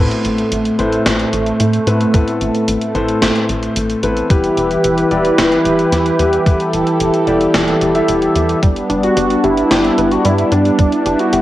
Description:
synthwave; 111 BPM; 4/4; straight; A minor; A4 = 440 Hz
brassy analog pad; sustained chords; 0.0-11.4 s; E3 to B4; -15 LUFS; equal; chorus, sidechain pumping
warm concert grand piano; stabs; 0.0-8.6 s; A2 to E5; -19 LUFS; left 2 dB; low-pass filter, tape echo
tight sequencer bass; bass; 0.0-11.4 s; E1 to A2; -21 LUFS; equal
gated 80s digital drum machine; drums; 0.1-11.4 s; hi-hat, snare drum; -20 LUFS; equal; gated reverb, gated reverb snare, cassette tape
electronic kick drum; drums; 2.1-10.9 s; -12 LUFS; equal; cassette tape
analog pluck; arpeggios; 8.6-11.4 s; G3 to B4; -22 LUFS; right 1 dB; chorus, tape echo
wide unison lead; melody; 9.0-11.4 s; D4 to F#4; -16 LUFS; equal; wide subtle chorus, cassette tape, analog delay
wet spring reverb, RT60 1.9 s, digital ambience; home recording on cassette; -12 LUFS; side -14 dB against mid
0.0-11.4 A section
0.0 Amadd9; 4.3 Em; 8.6 G
0.52 1.06 1.60 | 2.14 2.68 3.22 3.76 | 4.30 4.84 5.38 5.92 | 6.46 7.00 7.55 8.09 | 8.63 9.17 9.71 10.25 | 10.79 11.33

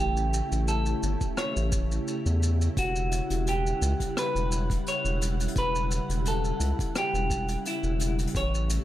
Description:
sunset chillout; 86 BPM; 4/4; swing 53% on 16ths; E dorian; A4 = 440 Hz
semi-hollow electric guitar; melody; 0.0-8.8 s; E4 to C#5; -31 LUFS; equal; spring reverb, tape echo
soft string machine; sustained chords; 0.0-8.8 s; C#3 to F#5; -33 LUFS; left 1 dB; ensemble chorus
round analog bass; bass; 0.0-8.8 s; E1 to E2; -27 LUFS; equal
jazz brush drum kit; drums; 0.2-8.8 s; hi-hat, rim click, shaker; -36 LUFS; left 1 dB
electronic kick drum; drums; 1.2-8.5 s; -31 LUFS; equal
studio ambience; dry, gritty hardware recording; -25 LUFS; side -14 dB against mid
0.0-8.8 A section
0.0 A7; 2.8 Em69
0.68 1.38 2.07 | 2.77 3.47 4.17 4.86 | 5.56 6.26 6.96 7.65 | 8.35

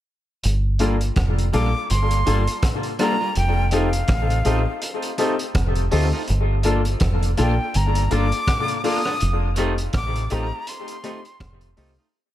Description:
lovers rock reggae; 82 BPM; 4/4; swing 58% on 16ths; G minor; A4 = 440 Hz
crunchy breakbeat drum kit; drums; 0.4-12.0 s; hi-hat, kick drum, rim click; -26 LUFS; equal; tape echo
deep dub fingered electric bass; bass; 0.5-12.0 s; F1 to D2; -20 LUFS; equal
warm grand piano; accompaniment; 0.8-11.9 s; A3 to A4; -26 LUFS; left 4 dB; tape echo
twangy electric guitar; stabs; 0.8-12.1 s; G3 to F4; -29 LUFS; right 4 dB; tape echo
breathy bright jazz flute; melody; 1.5-11.8 s; F5 to Eb6; -26 LUFS; left 1 dB; tape echo
light reverb; -18 LUFS; side -13 dB against mid
0.4-12.1 verse
fade-out 9.2-12.1
0.4 Gm7; 3.4 F7; 6.3 Gm7; 9.2 F7
| 0.44 1.17 1.90 2.63 | 3.36 4.09 4.82 5.55 | 6.28 7.01 7.75 8.48 | 9.21 9.94 10.67 11.40

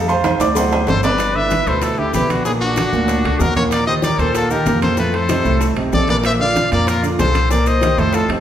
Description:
Afro-Cuban jazz; 190 BPM; 4/4; straight; A4 = 440 Hz
clear concert grand piano; accompaniment; 0.0-8.4 s; A2 to D6; -20 LUFS; right 2 dB
upright bass; bass; 0.0-8.4 s; G1 to F2; -21 LUFS; equal
agogo bells and timbales; percussion; 0.1-8.4 s; -26 LUFS; right 4 dB
congas; percussion; 0.1-8.4 s; -26 LUFS; left 1 dB
maracas; percussion; 0.1-8.3 s; -34 LUFS; left 6 dB
cowbell and bongos; percussion; 0.2-8.4 s; -28 LUFS; left 3 dB
brilliant trumpet; melody; 0.9-8.3 s; F#4 to F5; -20 LUFS; left 2 dB
silver concert flute; second line; 0.9-8.3 s; D4 to D5; -24 LUFS; left 2 dB
wet recital hall reverb, RT60 1.6 s; recorded in a church or concert hall; -14 LUFS; side -10 dB against mid
0.0-1.2 A section; 1.2-8.4 B section
grand piano solo 0.0-1.2; drum fill 0.2-1.2
0.0 F7; 0.6 D7; 1.2 G6; 2.5 Bbaug; 3.7 Ebadd9; 5.0 F7; 6.2 Bbmaj9; 7.5 Cm7
0.24 0.56 0.88 | 1.19 1.51 1.82 2.14 | 2.45 2.77 3.09 3.40 | 3.72 4.03 4.35 4.67 | 4.98 5.30 5.61 5.93 | 6.24 6.56 6.88 7.19 | 7.51 7.82 8.14

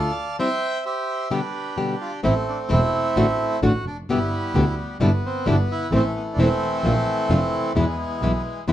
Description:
tango; 130 BPM; 4/4; rubato; A minor; A4 = 438 Hz
bandoneon; melody; 0.0-8.7 s; B2 to A5; -24 LUFS; right 1 dB
nylon-string guitar; accompaniment; 0.0-8.7 s; B2 to G4; -24 LUFS; left 2 dB
rich double bass; bass; 0.0-8.7 s; E1 to E2; -23 LUFS; right 1 dB
light reverb; dark, warm production, nothing above 10.3 kHz; -20 LUFS; side -12 dB against mid
0.0-2.2 A section; 2.2-8.7 B section
0.4 C/G; 1.3 G; 2.2 Am; 3.2 D/A; 4.1 G; 5.0 Em7/G; 5.9 Am; 6.8 Bb; 7.8 E
| 0.39 0.85 1.31 1.77 | 2.24 2.70 3.17 3.63 | 4.09 4.55 5.01 5.46 | 5.92 6.38 6.84 7.30 | 7.75 8.21 8.67

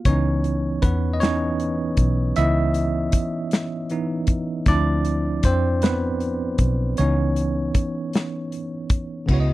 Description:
slow six-eight R&B; 52 BPM (dotted quarters); 6/8; straight; C# minor; A4 = 440 Hz
bell-like tine electric piano; accompaniment; 0.0-9.5 s; C#3 to E5; -23 LUFS; right 1 dB; medium stereo tremolo
vintage muted fingered electric bass; bass; 0.1-9.5 s; B1 to F2; -22 LUFS; equal
warm soul drum kit; drums; 0.1-9.5 s; crash cymbal, hi-hat, kick drum, snare drum; -21 LUFS; left 1 dB
little or no reverb; dry, close 1970s-style studio recording; -20 LUFS; side -17 dB against mid
0.0-9.3 A section
tine electric piano solo 0.0-9.3
0.1 C#m9; 4.7 Dm9; 7.0 C#m9
| 0.05 1.21 | 2.36 3.51 | 4.67 5.82 | 6.97 8.13 | 9.28

